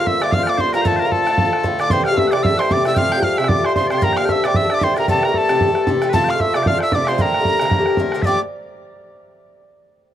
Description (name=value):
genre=celtic folk, Celtic reel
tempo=227 BPM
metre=4/4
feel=swing 57% on 8ths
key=G dorian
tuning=A4 = 440 Hz
part: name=breathy bright tin whistle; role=melody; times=0.0-8.4 s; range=A5 to G6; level=-20 LUFS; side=equal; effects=none
part: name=Celtic harp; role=second line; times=0.0-9.1 s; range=A4 to G5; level=-25 LUFS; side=right 2 dB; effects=none
part: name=loud bright bagpipes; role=second line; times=0.0-8.4 s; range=A4 to G5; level=-26 LUFS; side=left 4 dB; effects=none
part: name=Irish bouzouki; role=accompaniment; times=0.0-8.4 s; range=G2 to G4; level=-19 LUFS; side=left 1 dB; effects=none
part: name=bodhran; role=percussion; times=0.1-8.4 s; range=none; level=-22 LUFS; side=right 2 dB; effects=none
room=small room ambience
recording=dry, close 1970s-style studio recording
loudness=-15 LUFS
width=side -11 dB against mid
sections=0.0-8.3 A section; 8.3-9.3 B section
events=none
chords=0.0 Gm7; 0.9 Dm; 1.9 C6; 3.0 Fadd9; 4.0 Gm; 5.1 Am7; 6.1 F; 7.2 Gmadd9